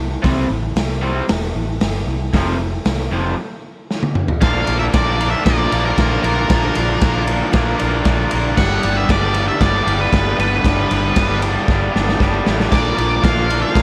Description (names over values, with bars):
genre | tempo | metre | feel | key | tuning
garage rock duo or trio | 116 BPM | 4/4 | straight | unclear | A4 = 440 Hz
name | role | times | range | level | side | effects
vintage muted fingered electric bass | bass | 0.0-13.8 s | E1 to C2 | -24 LUFS | equal | none
raw garage guitar | riff | 0.2-13.8 s | F2 to Bb4 | -22 LUFS | equal | overdrive
raw garage drum kit | drums | 0.2-13.8 s | crash cymbal, hi-hat, kick drum, ride cymbal, snare drum, toms | -21 LUFS | equal | none
octave-fuzz lead guitar | melody | 4.4-13.8 s | Bb4 to F#5 | -24 LUFS | equal | distortion
room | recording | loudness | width
light reverb, studio reverb | none | -17 LUFS | mono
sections
0.0-4.4 A section; 4.4-13.8 B section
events
break 3.4-4.4; drum fill 3.9-4.4, 11.7-12.7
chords
0.0 C5; 2.3 F5; 4.4 Bb; 8.6 G; 12.7 Bb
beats
| 0.24 0.76 1.29 1.81 | 2.33 2.85 3.38 3.90 | 4.42 4.94 5.46 5.98 | 6.50 7.01 7.53 8.05 | 8.57 9.09 9.61 10.12 | 10.64 11.16 11.68 12.19 | 12.71 13.22 13.74